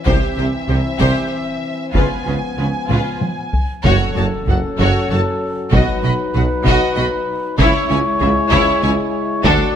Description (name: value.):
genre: cinematic, epic orchestral film score.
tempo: 96 BPM.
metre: 3/4.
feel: straight.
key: unclear.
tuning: A4 = 442 Hz.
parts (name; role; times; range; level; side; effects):
rich symphonic violin section; melody; 0.0-9.7 s; A4 to B5; -24 LUFS; left 2 dB; none.
rich symphonic violin section; second line; 0.1-9.7 s; D4 to D#5; -24 LUFS; left 2 dB; none.
rich symphonic viola section; accompaniment; 0.1-9.7 s; D4 to G4; -24 LUFS; equal; none.
dark French horn section; sustained chords; 0.1-9.8 s; E3 to F#4; -24 LUFS; left 3 dB; none.
rich symphonic cello section; bass; 0.1-9.5 s; F#2 to D3; -22 LUFS; right 2 dB; none.
rich symphonic double bass section; bass; 0.1-9.5 s; F#1 to D2; -22 LUFS; right 2 dB; none.
warm tuba; bass; 0.1-9.6 s; F#1 to D2; -24 LUFS; right 4 dB; none.
taiko ensemble; drums; 0.1-9.8 s; none; -20 LUFS; equal; none.
dark trumpet section; stabs; 3.8-9.8 s; A4 to D5; -22 LUFS; left 1 dB; none.
impact; sound effects; 3.8-5.7 s; none; -30 LUFS; left 1 dB; none.
room: light reverb.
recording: close, detailed microphones.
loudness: -14 LUFS.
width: side -9 dB against mid.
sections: 0.0-3.8 A section; 3.8-9.8 B section.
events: drum fill 2.9-3.8; impact 3.8-5.7.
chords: 0.1 C; 1.9 C#7; 3.8 F#m; 5.7 B; 7.6 C#m.